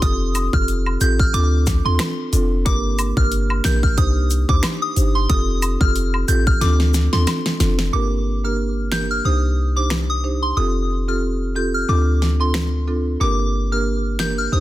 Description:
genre	dancehall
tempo	91 BPM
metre	4/4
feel	swing 56% on 16ths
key	unclear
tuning	A4 = 440 Hz
part	soft synth bell	melody	0.0-14.6 s	C6 to G6	-25 LUFS	equal	chorus, phaser, ping-pong delay
part	marimba with medium mallets	accompaniment	0.0-14.6 s	Bb3 to C5	-24 LUFS	right 2 dB	none
part	clean 808-style bass	bass	0.0-14.6 s	F1 to Eb2	-19 LUFS	equal	none
part	pop drum kit	drums	0.0-14.4 s	finger snaps, hi-hat, kick drum, rim click, snare drum	-21 LUFS	equal	none
part	cabasa and woodblock	percussion	0.3-7.8 s	none	-27 LUFS	left 1 dB	none
room	little or no reverb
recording	dense, heavily limited modern master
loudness	-16 LUFS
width	side -15 dB against mid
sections	0.0-7.9 A section; 7.9-14.6 B section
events	drum fill 6.6-7.9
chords	0.0 Fadd9; 1.3 Dm7; 2.7 Gm; 4.0 Cmadd9; 5.3 Fadd9; 6.6 Dm7; 7.9 Gm; 9.3 Cmadd9; 10.6 Fadd9; 11.9 Dm7; 13.2 Gm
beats	| 0.02 0.68 1.34 2.00 | 2.66 3.32 3.98 4.64 | 5.30 5.96 6.61 7.27 | 7.93 8.59 9.25 9.91 | 10.57 11.23 11.89 12.55 | 13.21 13.87 14.53

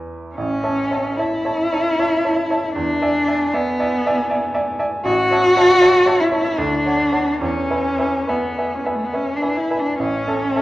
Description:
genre	classical, romantic duo for cello and grand piano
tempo	68-82 BPM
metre	3/4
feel	rubato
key	A major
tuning	A4 = 439 Hz
part	bright baby grand piano	accompaniment	0.0-10.6 s	A1 to A5	-22 LUFS	right 1 dB	none
part	warm cello	melody	0.4-10.6 s	A3 to F#4	-17 LUFS	left 1 dB	none
room	wet recital hall reverb, RT60 1.5 s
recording	worn, warbling old tape, cassette tape, warbly pitch drift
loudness	-16 LUFS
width	side -16 dB against mid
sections	0.4-10.6 A section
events	none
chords	0.4 A; 2.8 E7; 5.0 A; 6.6 Dmaj7; 7.4 E; 10.0 A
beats	| 0.36 1.17 1.98 | 2.75 3.53 4.29 | 5.05 5.81 6.59 | 7.42 8.29 9.14 | 9.98

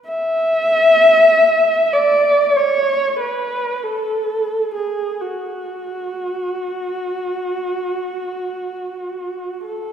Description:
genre	classical, free, expressive piece for unaccompanied viola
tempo	38-50 BPM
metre	4/4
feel	rubato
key	F# minor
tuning	A4 = 438 Hz
part	dark viola	solo	0.1-9.9 s	F#4 to E5	-16 LUFS	equal	none
room	wet church reverb, RT60 2.8 s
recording	heard from further back in the room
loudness	-15 LUFS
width	side -8 dB against mid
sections	0.0-9.9 A section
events	none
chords	none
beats	| 0.07 1.32 2.58 3.86 | 5.23 6.71 8.20 9.67

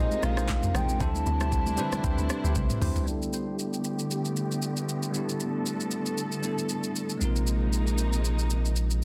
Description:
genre	amapiano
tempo	116 BPM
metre	4/4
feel	swing 55% on 16ths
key	unclear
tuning	A4 = 440 Hz
part	hollow clarinet-like synth lead	melody	0.0-2.5 s	Eb5 to A5	-36 LUFS	equal	chorus, tape echo
part	bell-like tine electric piano	accompaniment	0.0-9.0 s	G3 to B4	-35 LUFS	equal	low-pass filter
part	warm studio string section	sustained chords	0.0-9.0 s	C3 to A4	-36 LUFS	equal	sidechain pumping, low-pass filter
part	percussive organ stab	stabs	0.0-3.1 s	Eb4 to C5	-42 LUFS	equal	chorus, tape echo
part	deep log drum bass	bass	0.0-2.9 s	Bb1 to D3	-32 LUFS	equal	none
part	afro-pop drum kit	drums	0.1-9.0 s	handclaps, hi-hat, kick drum, rim click, shaker, toms	-34 LUFS	equal	none
part	congas	percussion	0.1-2.9 s	none	-42 LUFS	equal	none
part	punchy sub bass	bass	7.2-9.0 s	Bb1	-28 LUFS	equal	none
room	little or no reverb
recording	dense, heavily limited modern master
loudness	-28 LUFS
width	mono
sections	0.0-3.1 A section; 3.1-9.0 B section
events	drop 0.0-3.1; drum fill 2.6-3.1; filter sweep 3.1-9.0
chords	0.0 Bb9sus4; 1.0 D9sus4; 3.1 A9sus4; 7.2 Bb9sus4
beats	0.49 | 1.00 1.52 2.04 2.56 | 3.07 3.59 4.11 4.63 | 5.14 5.66 6.18 6.70 | 7.21 7.73 8.25 8.76

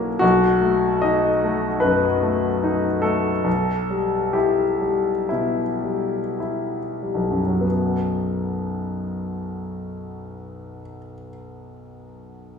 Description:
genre	classical, romantic character piece for solo piano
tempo	47-84 BPM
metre	4/4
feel	rubato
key	unclear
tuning	A4 = 439 Hz
part	clear concert grand piano	solo	0.0-12.6 s	B1 to D#5	-20 LUFS	left 2 dB	none
room	wet recital hall reverb, RT60 1.8 s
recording	heard from further back in the room, studio reverb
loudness	-19 LUFS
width	side -6 dB against mid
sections	0.0-7.6 A section; 7.6-12.3 B section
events	slowing down 0.0-7.6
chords	0.2 B7; 3.5 Em/B; 7.6 B5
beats	| 0.22 1.03 1.82 2.61 | 3.45 4.34 5.30 6.41 | 7.63 8.80 9.98 11.15

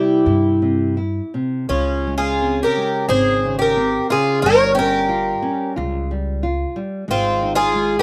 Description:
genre	fado-style ballad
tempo	83-92 BPM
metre	4/4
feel	rubato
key	unclear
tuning	A4 = 436 Hz
part	fingerpicked twelve-string acoustic guitar	melody	0.0-8.0 s	F4 to Db5	-21 LUFS	equal	none
part	fingerpicked twelve-string acoustic guitar	second line	0.0-8.0 s	C4 to Bb4	-23 LUFS	equal	none
part	nylon-string guitar	accompaniment	0.0-8.0 s	C3 to F4	-26 LUFS	equal	none
part	upright bass	bass	0.3-8.0 s	G1 to G2	-26 LUFS	equal	none
room	little or no reverb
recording	recorded outdoors, with no room sound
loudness	-19 LUFS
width	mono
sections	0.0-8.0 A section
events	none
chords	0.0 C; 1.7 Db5; 4.4 Gm7b5; 7.1 Ab5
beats	0.27 0.97 | 1.69 2.40 3.09 3.77 | 4.44 5.10 5.77 6.44 | 7.10 7.76

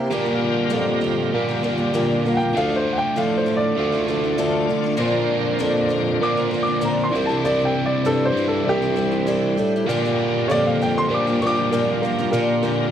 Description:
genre	rock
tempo	98 BPM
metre	4/4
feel	straight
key	unclear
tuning	A4 = 442 Hz
part	warm grand piano	melody	0.0-12.3 s	Bb3 to D6	-24 LUFS	equal	none
part	picked twelve-string acoustic guitar	accompaniment	0.0-12.9 s	Bb2 to Bb4	-26 LUFS	left 2 dB	none
part	reed electric piano	accompaniment	0.0-12.9 s	E4 to F5	-30 LUFS	right 5 dB	none
part	bright tonewheel organ	sustained chords	0.0-12.9 s	D4 to D5	-32 LUFS	equal	overdrive, chorus vibrato, slow rotary speaker
part	dark bassoon	bass	0.0-12.9 s	C2 to Bb3	-23 LUFS	right 1 dB	none
part	crunchy overdriven guitar	riff	0.1-12.9 s	Bb2 to G4	-23 LUFS	equal	spring reverb
room	little or no reverb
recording	dry, close 1970s-style studio recording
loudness	-18 LUFS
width	side -9 dB against mid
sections	0.0-12.3 A section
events	grand piano solo 0.0-12.3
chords	0.1 Gm7; 2.6 Dmadd9; 5.0 Bbadd9; 7.1 Cadd9; 9.9 Gm7; 12.3 Gm7/Bb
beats	| 0.11 0.72 1.33 1.94 | 2.55 3.16 3.77 4.38 | 5.00 5.61 6.22 6.83 | 7.44 8.05 8.66 9.27 | 9.88 10.49 11.10 11.71 | 12.32

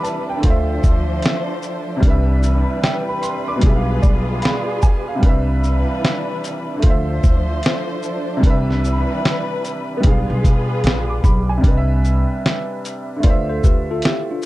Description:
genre	lo-fi hip hop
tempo	75 BPM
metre	4/4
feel	swing 64% on 16ths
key	unclear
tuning	A4 = 441 Hz
part	clear upright piano	accompaniment	0.0-14.5 s	B2 to D6	-22 LUFS	right 1 dB	plate reverb
part	warm studio string section	sustained chords	0.0-11.6 s	E3 to C5	-26 LUFS	left 1 dB	plate reverb
part	lo-fi sampler-style drum kit	drums	0.0-14.5 s	hi-hat, kick drum, shaker, snare drum	-16 LUFS	equal	none
part	upright bass	bass	0.4-14.0 s	Bb1 to B2	-19 LUFS	equal	none
part	tine electric piano	second line	13.2-14.5 s	D4 to D5	-24 LUFS	left 2 dB	medium stereo tremolo, tape echo, plate reverb
room	light reverb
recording	dark, warm production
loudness	-15 LUFS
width	side -17 dB against mid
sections	0.0-11.6 A section; 11.6-14.5 B section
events	upright piano fill 3.6-5.2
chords	0.4 Dm7; 2.0 Cmaj9; 3.6 G7b9/B; 5.2 Cmaj9; 6.8 Dm7; 8.4 Cmaj9; 10.0 G7b9/B; 11.6 Cmaj9; 13.2 Dm7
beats	0.43 1.24 | 2.04 2.83 3.63 4.43 | 5.24 6.04 6.83 7.63 | 8.44 9.23 10.04 10.84 | 11.63 12.44 13.23 14.04

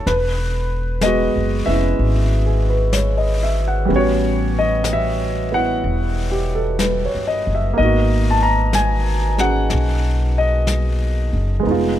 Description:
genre	jazz ballad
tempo	62 BPM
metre	4/4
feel	swing 67% on 8ths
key	unclear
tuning	A4 = 442 Hz
part	warm concert grand piano	accompaniment	0.0-12.0 s	G3 to Bb5	-19 LUFS	equal	none
part	upright bass	bass	0.0-12.0 s	E1 to Cb2	-19 LUFS	equal	none
part	jazz brush drum kit	drums	0.1-12.0 s	brushed snare drum, hi-hat, snare drum	-29 LUFS	left 4 dB	none
room	little or no reverb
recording	close, detailed microphones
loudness	-16 LUFS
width	side -12 dB against mid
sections	0.0-12.0 A section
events	none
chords	0.1 Eadd9; 3.9 A13; 7.8 Abm9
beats	| 0.07 1.02 1.98 2.94 | 3.90 4.86 5.83 6.80 | 7.78 8.75 9.72 10.68 | 11.64

